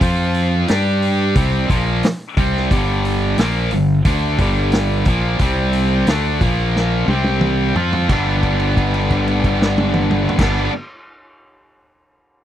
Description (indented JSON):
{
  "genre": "blues rock power trio and southern rock",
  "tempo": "89 BPM",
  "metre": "4/4",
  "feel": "straight",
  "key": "unclear",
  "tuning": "A4 = 440 Hz",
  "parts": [
    { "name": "tight distorted guitar", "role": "riff", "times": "0.0-10.7 s", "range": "G2 to G4", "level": "-18 LUFS", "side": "equal", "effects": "distortion" },
    { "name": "fuzz fingered electric bass", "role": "bass", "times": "0.0-10.7 s", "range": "G1 to G2", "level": "-19 LUFS", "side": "equal", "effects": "overdrive" },
    { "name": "vintage drum kit", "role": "drums", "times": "0.0-10.6 s", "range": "crash cymbal, hi-hat, kick drum, snare drum, toms", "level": "-19 LUFS", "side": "equal", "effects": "none" }
  ],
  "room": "little or no reverb",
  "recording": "dry, close 1970s-style studio recording",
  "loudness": "-15 LUFS",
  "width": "side -11 dB against mid",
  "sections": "0.0-8.1 A section; 8.1-10.8 B section",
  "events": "drum fill 6.8-8.1; held note 8.1-10.4",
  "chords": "0.0 F5; 0.7 G5; 1.4 C5; 2.7 Gm7; 5.4 C5; 6.1 D5; 6.4 Bb5; 7.1 C5; 7.8 F5; 8.1 G",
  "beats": "| 0.02 0.69 1.36 2.04 | 2.71 3.38 4.06 4.73 | 5.41 6.08 6.75 7.43 | 8.10 8.77 9.45 10.12"
}